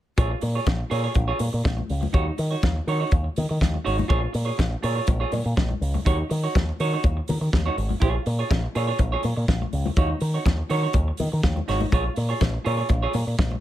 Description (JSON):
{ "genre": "disco", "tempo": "123 BPM", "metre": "4/4", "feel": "straight", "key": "Bb minor", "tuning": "A4 = 440 Hz", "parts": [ { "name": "semi-hollow electric guitar", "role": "accompaniment", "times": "0.2-13.6 s", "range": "Eb4 to Db5", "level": "-28 LUFS", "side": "right 4 dB", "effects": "none" }, { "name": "picked electric bass with an envelope filter", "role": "bass", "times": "0.2-13.5 s", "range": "Ab1 to Eb3", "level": "-25 LUFS", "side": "equal", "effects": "none" }, { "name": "warm soul drum kit", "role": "drums", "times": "0.2-13.5 s", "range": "hi-hat, kick drum, snare drum", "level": "-24 LUFS", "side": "equal", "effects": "none" }, { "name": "congas", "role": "percussion", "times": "0.2-13.6 s", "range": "none", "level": "-33 LUFS", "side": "left 6 dB", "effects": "none" } ], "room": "small room ambience", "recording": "none", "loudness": "-21 LUFS", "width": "side -13 dB against mid", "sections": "0.2-13.6 A section", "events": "none", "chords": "0.2 Bbm7; 2.1 Ebm7; 4.1 Bbm7; 6.1 Ebm7; 8.0 Bbm7; 10.0 Ebm7; 11.9 Bbm7" }